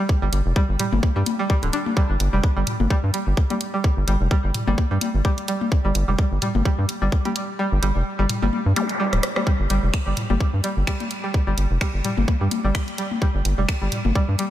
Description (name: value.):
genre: minimal techno.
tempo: 128 BPM.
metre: 4/4.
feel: swing 56% on 16ths.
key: unclear.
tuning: A4 = 439 Hz.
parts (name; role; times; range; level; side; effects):
string-like resonator pluck; riff; 0.0-14.4 s; D3 to D4; -26 LUFS; right 1 dB; chorus, sidechain pumping, diffuse ambient delay.
electronic kick drum; drums; 0.1-14.3 s; none; -20 LUFS; equal; overdrive, small room ambience.
rubbery square bass; bass; 0.2-14.4 s; D1 to G2; -21 LUFS; equal; sidechain pumping.
garage drum kit; drums; 0.3-14.5 s; finger snaps, hi-hat, rim click; -28 LUFS; right 2 dB; overdrive, small room ambience.
electronic toms; percussion; 0.8-14.1 s; none; -29 LUFS; left 4 dB; small room ambience, diffuse ambient delay.
zap; sound effects; 8.8-8.9 s; none; -34 LUFS; equal; none.
room: light reverb.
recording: none.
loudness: -19 LUFS.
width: side -13 dB against mid.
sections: 0.0-14.5 A section.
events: kick drops out 7.6-9.5; drum fill 9.1-9.5.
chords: 0.0 G5.